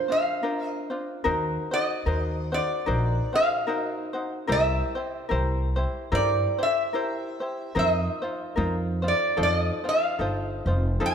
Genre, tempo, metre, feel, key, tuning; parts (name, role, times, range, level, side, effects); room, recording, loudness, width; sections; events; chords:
Hawaiian; 74 BPM; 4/4; swing 57% on 8ths; A4 = 440 Hz
metal-body resonator slide guitar; melody; 0.0-11.1 s; C5 to A5; -26 LUFS; equal; slapback echo
ukulele; accompaniment; 0.0-11.1 s; D4 to C5; -29 LUFS; left 2 dB
upright bass; bass; 1.3-11.1 s; F1 to G2; -27 LUFS; equal
moderate scoring stage reverb, RT60 2.1 s; -23 LUFS; side -7 dB against mid
0.0-11.1 A section
0.0 Bbadd9; 1.2 Ebm6; 4.5 C7; 7.8 F7sus4; 9.4 F7